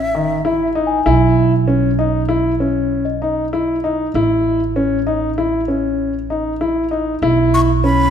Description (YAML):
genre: contemporary instrumental, chamber music in an uneven meter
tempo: 97 BPM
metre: 5/4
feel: straight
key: A lydian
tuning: A4 = 440 Hz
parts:
  - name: breathy mellow jazz flute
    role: melody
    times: 0.0-0.7, 7.5-8.1 s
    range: E5 to C#6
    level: -19 LUFS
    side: equal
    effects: none
  - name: upright bass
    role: bass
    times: 0.0-8.1 s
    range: A1 to B1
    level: -20 LUFS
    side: right 4 dB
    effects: none
  - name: celesta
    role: texture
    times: 0.0-4.4 s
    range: D#5 to G#5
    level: -24 LUFS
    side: left 6 dB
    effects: none
  - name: warm concert grand piano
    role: arpeggios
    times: 0.1-8.1 s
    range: D#3 to E4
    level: -16 LUFS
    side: left 2 dB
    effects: none
room: moderate scoring stage reverb, RT60 1.9 s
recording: none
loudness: -14 LUFS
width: side -8 dB against mid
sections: 0.0-8.1 A section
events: none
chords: 0.0 A5; 1.1 Bsus4; 4.1 A; 7.2 Bsus4